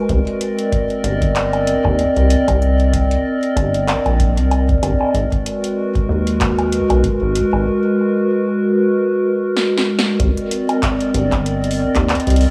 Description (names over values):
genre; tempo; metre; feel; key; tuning
IDM; 95 BPM; 4/4; swing 56% on 16ths; C minor; A4 = 440 Hz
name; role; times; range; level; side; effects
warbly tape-like pad; sustained chords; 0.0-12.5 s; Ab3 to Eb5; -20 LUFS; equal; chorus, built-in reverb, vintage 12-bit sampler grit, sidechain pumping
deep acid bass; bass; 0.1-12.5 s; G1 to Eb2; -19 LUFS; equal; none
electro analog drum machine; drums; 0.1-12.5 s; bongos, handclaps, hi-hat, snare drum; -26 LUFS; equal; tape echo
electronic kick drum; drums; 0.1-12.1 s; none; -24 LUFS; equal; none
room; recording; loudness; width
light reverb; dry, gritty hardware recording, transformer saturation, small room ambience; -17 LUFS; mono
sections
0.0-10.2 A section; 10.2-12.5 B section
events
drum fill 9.6-10.2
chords
0.1 Cm9; 5.1 Abm9; 10.2 Cm9